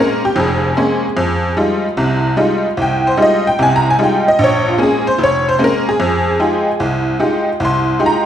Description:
solo jazz; 149 BPM; 4/4; swing 67% on 8ths; F minor; A4 = 440 Hz
tack piano; solo; 0.0-8.3 s; F1 to C6; -12 LUFS; equal
wet recital hall reverb, RT60 1.6 s; recorded in a church or concert hall; -12 LUFS; side -10 dB against mid
0.0-8.3 A section
honky-tonk piano solo 0.0-8.3
0.0 Bbm9; 1.2 Fm9; 4.4 Bbm9; 6.0 Fm9

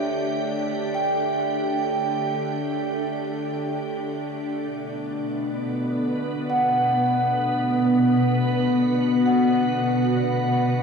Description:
ambient; free time; A4 = 440 Hz
soft additive organ-like pad; sustained chords; 0.0-10.8 s; B2 to G4; -22 LUFS; equal; ensemble chorus, built-in reverb, cassette tape, plate reverb
vibraphone with medium mallets; arpeggios; 0.0-10.8 s; E5 to G5; -26 LUFS; right 1 dB; cassette tape, tape echo, plate reverb
bowed-like drone; drone; 0.0-10.8 s; D3 to A3; -34 LUFS; equal; built-in reverb, cassette tape
wet booth ambience, RT60 0.2 s; home recording on cassette; -21 LUFS; side -5 dB against mid
0.0-10.8 A section
fade-out on synth drone 0.0-10.8
0.0 G5; 4.6 Bm

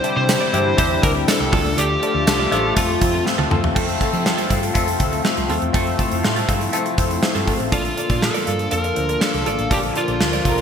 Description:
1980s-style pop; 121 BPM; 4/4; straight; F major; A4 = 438 Hz
fuzz lead guitar; melody; 0.0-3.2, 7.7-10.6 s; F4 to C5; -22 LUFS; equal; distortion, digital delay
bell-like tine electric piano; accompaniment; 0.0-10.6 s; Bb2 to C5; -22 LUFS; left 4 dB; tube saturation, phaser
chorused pulse-width pad; sustained chords; 0.0-10.6 s; C3 to F4; -29 LUFS; equal
direct-recorded clean electric guitar; riff; 0.0-10.6 s; C4 to D5; -30 LUFS; right 6 dB; wide subtle chorus, digital delay
gated 80s drum kit; drums; 0.0-10.6 s; crash cymbal, hi-hat, kick drum, snare drum, tambourine, toms; -21 LUFS; right 1 dB; gated reverb
hollow-body short-scale fingered electric bass; bass; 0.2-10.6 s; Ab1 to F3; -25 LUFS; right 1 dB
analog synth brass; stabs; 0.3-2.7 s; E3 to A4; -30 LUFS; right 1 dB
warm studio violin section; second line; 10.4-10.6 s; Bb4; -32 LUFS; right 4 dB
moderate lush hall reverb, RT60 2.1 s; bright 1980s-style digital production; -16 LUFS; side -7 dB against mid
0.0-3.8 A section; 3.8-7.7 B section; 7.7-10.6 C section
drum fill 3.3-3.8
0.0 Cadd9; 1.5 Dm; 2.8 F; 7.7 Bbmaj7

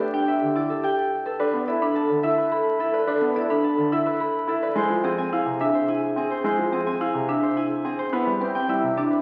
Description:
classical, minimalist pattern music; 107 BPM; 3/4; straight; A4 = 441 Hz
concert harp; melody; 0.0-9.2 s; G4 to B5; -28 LUFS; equal
warm concert grand piano; accompaniment; 0.0-9.0 s; C3 to E4; -29 LUFS; equal
marimba with medium mallets; arpeggios; 0.0-9.2 s; C4 to D5; -29 LUFS; equal
mellow French horn; second line; 0.1-9.2 s; E4 to A4; -34 LUFS; equal
wet scoring stage reverb, RT60 1.6 s; very old 78 rpm record, vinyl crackle, faint mains hum; -23 LUFS; mono
0.0-9.2 A section
0.0 Em7; 1.4 Asus2; 4.8 Fm; 8.1 Cmaj7

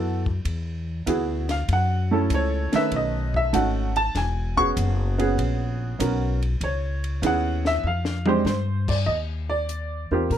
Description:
jazz piano trio; 98 BPM; 4/4; swing 69% on 8ths; A4 = 440 Hz
warm upright piano; melody; 0.0-10.4 s; D#3 to C#6; -24 LUFS; right 2 dB
upright bass; bass; 0.0-10.4 s; E1 to Bb2; -25 LUFS; left 1 dB
compact cocktail drum kit; drums; 0.3-10.4 s; crash cymbal, hi-hat, kick drum, ride cymbal, snare drum, toms; -33 LUFS; left 3 dB
light reverb; close, detailed microphones; -22 LUFS; side -10 dB against mid
0.0-9.1 A section; 9.1-10.4 B section
upright piano solo 0.0-9.1; drum fill 7.8-8.5
0.0 D69; 1.7 F#m7; 2.9 B13; 4.1 E69; 6.6 C#m9; 7.8 Fsus2; 9.1 Eb5

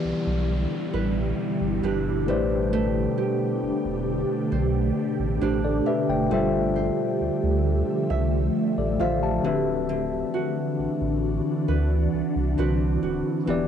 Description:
contemporary R&B; 67 BPM; 4/4; straight; A4 = 440 Hz
tine electric piano; accompaniment; 0.0-13.7 s; D3 to A5; -28 LUFS; left 6 dB; medium stereo tremolo, cassette tape
ethereal airy pad; sustained chords; 0.1-13.7 s; B2 to E5; -26 LUFS; equal; ensemble chorus, built-in reverb, phaser, cassette tape
nylon-string guitar; arpeggios; 0.0-13.7 s; D3 to E5; -32 LUFS; right 9 dB; cassette tape, analog delay
warm sub bass; bass; 0.0-13.7 s; D1 to D2; -27 LUFS; right 1 dB
downlifter; sound effects; 0.0-6.3 s; -42 LUFS; equal
light reverb, digital ambience; home recording on cassette, nothing above 10.3 kHz; -22 LUFS; side -8 dB against mid
0.0-13.7 A section
0.0 Em7; 2.3 Am11; 6.3 G13sus4; 9.4 D13

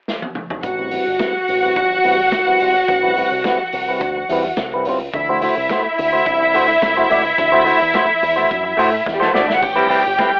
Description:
disco; 107 BPM; 4/4; straight; A dorian; A4 = 441 Hz
vintage drum kit; drums; 0.1-10.3 s; hi-hat, kick drum, snare drum, splash cymbal, toms; -29 LUFS; equal
dark studio violin section; second line; 0.6-10.4 s; G3 to G5; -18 LUFS; equal
semi-hollow electric guitar; accompaniment; 0.6-10.4 s; G3 to D5; -22 LUFS; equal; low-pass filter
picked electric bass with an envelope filter; bass; 0.6-10.2 s; G1 to A2; -30 LUFS; equal
light reverb; vinyl crackle, telephone sound; -17 LUFS; mono
0.6-10.4 A section
drum fill 0.1-0.6, 9.1-9.6; filter sweep on clean electric guitar 0.6-10.4
0.0 N.C.; 0.6 Am9; 5.1 D9; 9.6 Am9

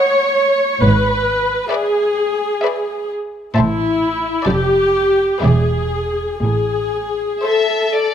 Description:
classical, slow romantic movement for string orchestra; 59-68 BPM; 3/4; rubato; A minor; A4 = 440 Hz
warm studio violin section; melody; 0.0-8.1 s; D5 to A5; -24 LUFS; left 4 dB
clear studio violin section; second line; 0.0-8.1 s; B4 to E5; -26 LUFS; left 3 dB
dark studio viola section; accompaniment; 0.0-8.1 s; E4 to C#5; -16 LUFS; left 1 dB
rich studio cello section; bass; 0.8-7.2 s; E2 to A2; -21 LUFS; right 1 dB
warm studio double bass section; bass; 0.8-7.2 s; E1 to A1; -20 LUFS; right 2 dB
light reverb; close, detailed microphones; -14 LUFS; side -9 dB against mid
0.0-8.1 A section
0.0 B; 0.8 E7/G#; 3.6 Am; 4.5 Dm/F; 5.4 E7; 6.4 Am

